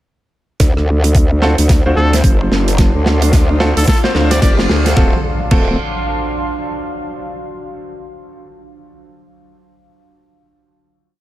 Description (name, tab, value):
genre	glitch hop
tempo	110 BPM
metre	4/4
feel	swing 60% on 16ths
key	unclear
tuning	A4 = 442 Hz
part	growl bass	bass	0.6-5.8 s	D1 to D2	-14 LUFS	equal	chorus, tube saturation
part	electronic kick drum	drums	0.6-5.6 s	none	-12 LUFS	equal	overdrive
part	modern studio drum kit	drums	0.6-5.6 s	crash cymbal, hi-hat, rim click, snare drum	-20 LUFS	right 2 dB	none
part	riser and impact	sound effects	2.4-7.1 s	none	-25 LUFS	equal	none
part	deep dark ambient pad	texture	1.6-7.1 s	F#3 to C6	-24 LUFS	right 1 dB	chorus, built-in reverb, sidechain pumping
part	bright baby grand piano	stabs	1.4-5.7 s	C4 to C5	-22 LUFS	equal	vintage 12-bit sampler grit, sidechain pumping, dub echo
part	bright trumpet	melody	2.0-4.5 s	A4 to D5	-24 LUFS	left 1 dB	dub echo
room	small room reverb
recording	none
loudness	-11 LUFS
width	side -15 dB against mid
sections	0.6-5.0 build; 5.0-7.1 final chord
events	build-up 0.6-5.0; drum fill 0.6-5.0; riser 2.4-5.0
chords	0.6 D7#9